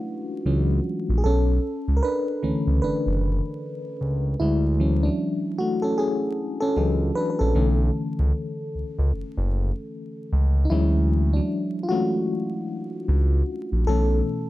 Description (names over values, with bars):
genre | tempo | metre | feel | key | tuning
R&B, neo-soul | 76 BPM | 4/4 | swing 60% on 16ths | B dorian | A4 = 438 Hz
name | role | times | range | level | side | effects
FM electric piano with auto-pan | accompaniment | 0.0-14.5 s | B2 to B4 | -25 LUFS | left 1 dB | none
smooth synth bass | bass | 0.5-14.2 s | F#1 to D2 | -21 LUFS | equal | none
room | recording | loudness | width
light reverb | vinyl crackle | -21 LUFS | side -16 dB against mid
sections
0.0-14.5 A section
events
FM electric piano solo 0.0-14.5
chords
0.0 Dmaj9#11; 1.2 Bm11; 4.4 Dmaj9#11; 7.5 Bm11 (rootless); 10.7 Dmaj9#11; 13.9 B9sus4